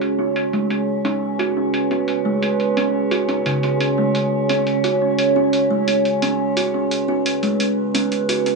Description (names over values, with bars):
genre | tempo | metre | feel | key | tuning
half-time drum and bass | 174 BPM | 4/4 | half-time | unclear | A4 = 440 Hz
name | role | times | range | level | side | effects
dark analog pad | sustained chords | 0.0-8.6 s | C#4 to C#5 | -23 LUFS | right 2 dB | chorus, phaser
kalimba | arpeggios | 0.0-8.6 s | C#3 to G#4 | -20 LUFS | right 4 dB | low-pass filter, tape echo
electronic hi-hat | drums | 0.0-8.5 s | none | -26 LUFS | equal | low-pass filter on hats, low-pass filter on snare, low-pass filter on cymbals
metallic inharmonic drone | texture | 0.0-8.6 s | C#4 | -25 LUFS | left 2 dB | chorus, built-in reverb
room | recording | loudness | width
wet spring reverb, RT60 1.3 s | echo-heavy mix | -17 LUFS | side -2 dB against mid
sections
0.0-8.6 A section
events
filter sweep on kalimba 0.0-8.6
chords
0.0 C#5